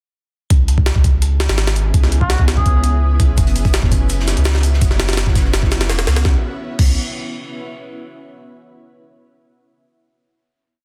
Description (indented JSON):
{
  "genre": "drum and bass, jungle",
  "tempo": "167 BPM",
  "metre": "4/4",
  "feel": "straight",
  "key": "C# minor",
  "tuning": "A4 = 439 Hz",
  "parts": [
    { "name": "granular cloud pad", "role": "sustained chords", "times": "1.3-6.4 s", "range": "B3 to G#4", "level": "-30 LUFS", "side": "equal", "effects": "built-in reverb, vintage 12-bit sampler grit" },
    { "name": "soft dub sub bass", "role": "bass", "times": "0.5-7.0 s", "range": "E1 to C#2", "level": "-18 LUFS", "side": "equal", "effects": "tube saturation" },
    { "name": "jungle sampler-style drum kit", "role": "drums", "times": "0.5-6.9 s", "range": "crash cymbal, hi-hat, kick drum, snare drum", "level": "-18 LUFS", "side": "equal", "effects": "none" },
    { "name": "trumpet with cup mute", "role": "melody", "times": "2.2-3.1 s", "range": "F#4 to G#4", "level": "-28 LUFS", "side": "equal", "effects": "dub echo" },
    { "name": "loose indie drum kit", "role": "drums", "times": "3.4-6.2 s", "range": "hi-hat, shaker, snare drum", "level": "-33 LUFS", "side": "equal", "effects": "none" }
  ],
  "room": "studio reverb",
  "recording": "dense, heavily limited modern master",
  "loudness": "-16 LUFS",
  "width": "mono",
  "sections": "0.5-6.3 drop; 6.3-7.7 final chord",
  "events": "drop 0.5-6.3",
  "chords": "0.5 C#m7; 3.4 F#7sus4; 6.3 C#m7",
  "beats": "| 0.50 0.86 1.22 1.58 | 1.94 2.30 2.66 3.02 | 3.38 3.74 4.10 4.46 | 4.82 5.17 5.53 5.89 | 6.25 6.61"
}